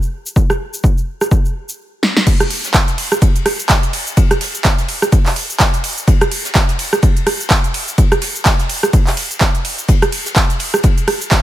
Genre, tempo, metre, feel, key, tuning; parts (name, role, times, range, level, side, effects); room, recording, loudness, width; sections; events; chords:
house; 126 BPM; 4/4; swing 58% on 16ths
big-room dance drum kit; drums; 0.0-11.4 s; crash cymbal, handclaps, hi-hat, ride cymbal, rim click, shaker, snare drum; -16 LUFS; right 1 dB
electronic kick drum; drums; 0.4-11.4 s; -13 LUFS; equal
jazz brush drum kit; drums; 2.3-11.4 s; ride cymbal, snare drum; -28 LUFS; left 4 dB; high-pass filter on cymbals, high-pass filter on snare, high-pass filter on room
little or no reverb; -12 LUFS; side -14 dB against mid
0.0-2.3 A section; 2.3-11.4 B section
drum fill 2.0; drop 2.3-11.4